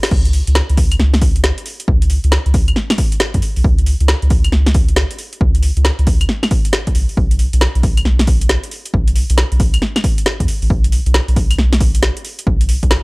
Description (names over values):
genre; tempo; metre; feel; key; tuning
UK garage, two-step garage; 136 BPM; 4/4; swing 64% on 16ths; unclear; A4 = 440 Hz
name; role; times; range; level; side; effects
garage drum kit; drums; 0.0-13.0 s; claves, crash cymbal, hi-hat, snare drum; -19 LUFS; equal; overdrive
soft dub sub bass; bass; 0.1-13.0 s; A1 to F#2; -14 LUFS; equal; sidechain pumping
electronic kick drum; drums; 0.1-12.9 s; none; -16 LUFS; equal; none
room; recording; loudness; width
digital ambience; dry, gritty hardware recording; -12 LUFS; side -27 dB against mid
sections
0.0-13.0 A section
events
none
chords
none